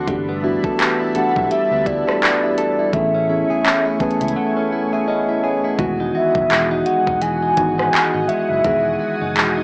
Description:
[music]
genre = contemporary R&B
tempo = 84 BPM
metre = 4/4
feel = swing 58% on 16ths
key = E major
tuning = A4 = 440 Hz
[part]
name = muted felt-like synth keys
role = accompaniment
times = 0.0-9.6 s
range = D#3 to A5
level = -25 LUFS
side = equal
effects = chorus
[part]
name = lush unison pad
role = sustained chords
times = 0.0-9.6 s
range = G3 to D#6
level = -30 LUFS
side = equal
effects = chorus, sidechain pumping
[part]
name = direct-recorded clean electric guitar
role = arpeggios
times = 0.0-9.6 s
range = D3 to A4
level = -26 LUFS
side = equal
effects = none
[part]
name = vintage muted fingered electric bass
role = bass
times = 0.0-9.6 s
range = E1 to D2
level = -31 LUFS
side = equal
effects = none
[part]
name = smooth R&B drum kit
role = drums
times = 0.1-9.6 s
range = handclaps, hi-hat, kick drum, rim click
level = -22 LUFS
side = equal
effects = none
[part]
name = hollow clarinet-like synth lead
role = melody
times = 1.2-9.2 s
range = D5 to G#5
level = -22 LUFS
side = equal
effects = chorus
[sound]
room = digital ambience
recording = dry, gritty hardware recording, small speaker sound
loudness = -18 LUFS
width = mono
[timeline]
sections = 0.0-5.8 A section; 5.8-9.6 B section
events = synth keys fill 3.6-5.8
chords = 0.1 G69; 2.9 Amaj7; 5.8 Emaj9

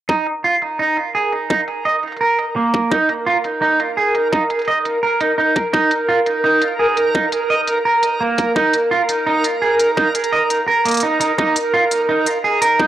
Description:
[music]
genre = half-time drum and bass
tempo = 170 BPM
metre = 4/4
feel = half-time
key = unclear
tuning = A4 = 439 Hz
[part]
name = clean electric guitar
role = arpeggios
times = 0.1-12.9 s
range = Bb3 to Eb5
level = -16 LUFS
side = right 2 dB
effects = low-pass filter, cassette tape, tape echo
[part]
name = electronic kick drum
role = drums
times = 0.1-12.9 s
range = none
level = -21 LUFS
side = left 2 dB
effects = overdrive, high-pass filter on kick, cassette tape
[part]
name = backwards swelling texture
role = texture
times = 1.2-12.9 s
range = Bb4 to Eb5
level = -20 LUFS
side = right 1 dB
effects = built-in reverb, cassette tape
[part]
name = electronic hi-hat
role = drums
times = 0.3-12.7 s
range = none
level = -26 LUFS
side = left 2 dB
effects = low-pass filter on hats, cassette tape, low-pass filter on room
[sound]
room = wet studio reverb, RT60 0.5 s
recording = home recording on cassette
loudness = -15 LUFS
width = side -12 dB against mid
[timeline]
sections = 0.1-12.9 A section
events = filter sweep on drum 0.1-12.9; kick drops out 10.7-11.4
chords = 0.1 Eb5

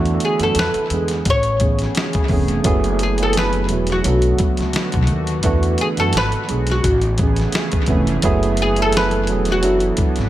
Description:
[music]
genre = R&B, neo-soul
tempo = 86 BPM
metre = 4/4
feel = swing 55% on 16ths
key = F# minor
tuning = A4 = 439 Hz
[part]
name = tine electric piano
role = accompaniment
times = 0.0-10.3 s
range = E3 to A4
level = -21 LUFS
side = right 4 dB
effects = dub echo
[part]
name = chorused pulse-width pad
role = sustained chords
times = 0.0-10.3 s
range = C#3 to G#4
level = -29 LUFS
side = left 2 dB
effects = none
[part]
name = upright bass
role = bass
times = 0.0-10.3 s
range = E1 to F#2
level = -21 LUFS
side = left 1 dB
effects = none
[part]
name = dusty soul sampler-style drum kit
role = drums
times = 0.1-10.3 s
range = hi-hat, kick drum, snare drum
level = -21 LUFS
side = left 1 dB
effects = dub echo
[part]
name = oud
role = melody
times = 0.2-10.3 s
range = F#4 to C#5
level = -20 LUFS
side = equal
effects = dub echo
[sound]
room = light reverb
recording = echo-heavy mix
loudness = -15 LUFS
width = side -14 dB against mid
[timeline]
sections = 0.0-10.3 A section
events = none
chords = 0.0 E9sus4; 0.6 E7; 1.3 Amaj9; 2.6 F#m11; 4.0 Bm7; 5.4 E9sus4; 6.1 G#m7b5; 6.8 Amaj9; 8.2 F#m11; 9.6 D69/F#

